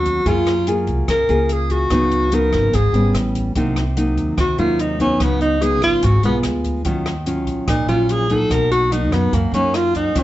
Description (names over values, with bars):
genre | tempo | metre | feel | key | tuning
bossa nova | 146 BPM | 4/4 | straight | unclear | A4 = 436 Hz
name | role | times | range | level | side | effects
mellow tenor saxophone | melody | 0.0-10.2 s | A#3 to Bb4 | -18 LUFS | equal | none
nylon-string guitar | accompaniment | 0.0-10.2 s | F#2 to Ab4 | -20 LUFS | equal | none
upright bass | bass | 0.0-10.2 s | Ab1 to Gb2 | -21 LUFS | equal | none
open jazz drum kit | drums | 0.1-10.2 s | hi-hat, kick drum, rim click | -26 LUFS | equal | none
room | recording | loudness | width
light reverb | nothing above 7.9 kHz | -15 LUFS | side -15 dB against mid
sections
0.3-10.2 A section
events
tenor saxophone solo 0.0-10.2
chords
0.3 Gbmaj9; 1.9 Db9sus4; 3.1 A9; 3.6 Cm7b5; 5.2 Db9sus4; 6.4 Ddim7; 6.9 Ebm9; 8.5 Bmaj7